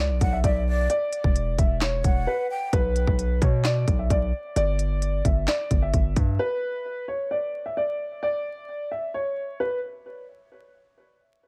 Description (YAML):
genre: hip hop, trap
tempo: 131 BPM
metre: 4/4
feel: half-time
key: B minor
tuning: A4 = 440 Hz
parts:
  - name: dark concert grand piano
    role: melody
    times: 0.0-9.8 s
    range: B4 to E5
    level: -30 LUFS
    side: equal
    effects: none
  - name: hard-hitting 808-style bass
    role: bass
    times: 0.0-6.4 s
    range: E1 to B2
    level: -27 LUFS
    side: equal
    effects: none
  - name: breathy jazz flute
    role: second line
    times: 0.2-2.7 s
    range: D5 to G5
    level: -35 LUFS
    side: equal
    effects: tape echo
  - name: trap drum kit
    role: drums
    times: 0.2-6.3 s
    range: handclaps, hi-hat, kick drum, snare drum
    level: -26 LUFS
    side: equal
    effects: none
room: small room ambience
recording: vinyl crackle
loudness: -25 LUFS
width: mono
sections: 0.0-2.7 A section; 2.7-10.1 B section; 10.1-11.5 C section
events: break 2.3-2.7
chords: 0.0 Bm; 0.9 Esus2; 2.7 Bm; 4.6 G5; 6.4 N.C.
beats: 0.44 | 0.90 1.36 1.81 2.27 | 2.73 3.19 3.65 4.10 | 4.56 5.02 5.48 5.94 | 6.39 6.85 7.31 7.77 | 8.23 8.68 9.14 9.60